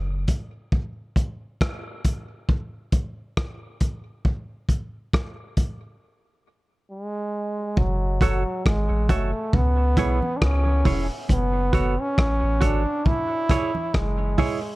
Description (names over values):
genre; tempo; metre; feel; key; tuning
dub reggae; 68 BPM; 4/4; swing 57% on 16ths; F# minor; A4 = 441 Hz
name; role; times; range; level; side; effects
warm sub bass; bass; 0.0-0.3, 7.8-14.4 s; E1 to C#2; -23 LUFS; equal; none
crunchy breakbeat drum kit; drums; 0.3-14.6 s; hi-hat, kick drum, rim click; -23 LUFS; equal; none
clear trombone; melody; 6.9-14.8 s; F#3 to E4; -26 LUFS; right 1 dB; dub echo
congas; percussion; 7.8-14.6 s; none; -33 LUFS; right 3 dB; none
semi-hollow electric guitar; accompaniment; 8.2-14.6 s; E4 to C#5; -30 LUFS; right 6 dB; dub echo
room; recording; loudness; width
small room ambience; dark, warm production; -21 LUFS; side -19 dB against mid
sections
0.0-7.8 A section; 7.8-14.8 B section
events
break 0.0-7.8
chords
0.0 N.C.; 7.8 F#m; 9.5 C#m; 11.3 F#m; 13.1 C#m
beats
| 0.72 1.60 2.48 3.37 | 4.25 5.13 6.01 6.89 | 7.77 8.65 9.53 10.41 | 11.29 12.18 13.06 13.94